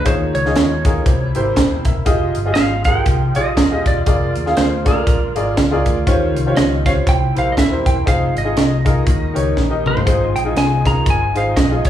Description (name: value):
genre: uptempo gospel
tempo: 120 BPM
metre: 4/4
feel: swing 58% on 8ths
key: Ab major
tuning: A4 = 440 Hz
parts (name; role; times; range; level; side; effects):
- clean lap steel guitar; melody; 0.0-11.9 s; Bb4 to Bb5; -21 LUFS; right 1 dB; none
- clear grand piano; accompaniment; 0.0-11.9 s; Ab2 to G5; -20 LUFS; equal; none
- muted studio string section; sustained chords; 0.0-11.9 s; F3 to F4; -31 LUFS; left 1 dB; none
- fingered electric bass; bass; 0.0-11.9 s; Eb1 to Eb2; -20 LUFS; left 1 dB; none
- crisp fusion drum kit; drums; 0.1-11.9 s; hi-hat, kick drum, snare drum, toms; -17 LUFS; equal; none
- bright tonewheel organ; sustained chords; 10.1-11.9 s; F3 to Ab4; -30 LUFS; right 4 dB; none
room: moderate large studio reverb, RT60 1.0 s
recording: band playing live in one room, studio reverb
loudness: -14 LUFS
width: side -11 dB against mid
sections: 0.0-11.9 A section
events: drum fill 9.6-10.1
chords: 0.1 Eb9sus4; 1.1 C7; 2.1 Fm9; 4.1 Bb7/F; 6.1 Eb13; 7.1 C7; 8.1 Fm7; 9.1 Eb7; 10.1 Ab6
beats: | 0.06 0.56 1.06 1.56 | 2.06 2.56 3.06 3.57 | 4.07 4.57 5.07 5.57 | 6.07 6.57 7.07 7.57 | 8.07 8.57 9.07 9.57 | 10.07 10.57 11.07 11.56